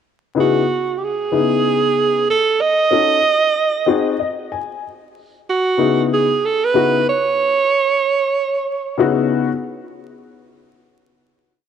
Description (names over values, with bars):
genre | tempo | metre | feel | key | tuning
hip hop | 94 BPM | 4/4 | swing 63% on 16ths | C# minor | A4 = 439 Hz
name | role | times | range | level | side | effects
breathy alto saxophone | melody | 0.4-9.3 s | F#4 to D#5 | -16 LUFS | right 4 dB | cassette tape
dark upright piano | accompaniment | 0.4-9.5 s | C#3 to G#5 | -18 LUFS | left 7 dB | none
room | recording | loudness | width
moderate lush hall reverb, RT60 2.9 s | home recording on cassette, vinyl crackle | -15 LUFS | side -8 dB against mid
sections
0.0-9.9 A section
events
upright piano fill 3.9-4.8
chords
0.0 C#m7; 2.3 D#m7b5; 3.6 G#7; 4.8 C#m7